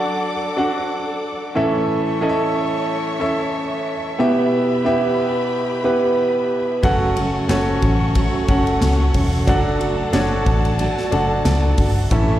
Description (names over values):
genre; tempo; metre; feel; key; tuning
piano-driven pop; 91 BPM; 4/4; swing 56% on 16ths; D major; A4 = 441 Hz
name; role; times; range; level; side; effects
warm upright piano; accompaniment; 0.0-12.4 s; A2 to F#5; -19 LUFS; equal; plate reverb
warm studio string section; sustained chords; 0.0-12.4 s; F#3 to D6; -27 LUFS; equal; plate reverb
picked steel-string acoustic guitar; riff; 6.8-12.4 s; F#2 to F#4; -25 LUFS; right 3 dB; none
vintage muted picked electric bass; bass; 6.8-12.4 s; E1 to C#2; -19 LUFS; equal; none
modern studio drum kit; drums; 6.8-12.3 s; handclaps, hi-hat, kick drum, ride cymbal, snare drum; -23 LUFS; equal; none
room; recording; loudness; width
light reverb; live gig heard through the venue's PA, recital hall reverb; -16 LUFS; side -13 dB against mid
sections
0.0-12.4 A section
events
none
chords
0.0 D/F#; 1.6 A; 4.2 Em; 6.8 F#m; 9.5 D/F#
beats
0.23 0.90 | 1.55 2.21 2.88 3.54 | 4.20 4.86 5.52 6.18 | 6.84 7.50 8.16 8.81 | 9.47 10.13 10.79 11.45 | 12.11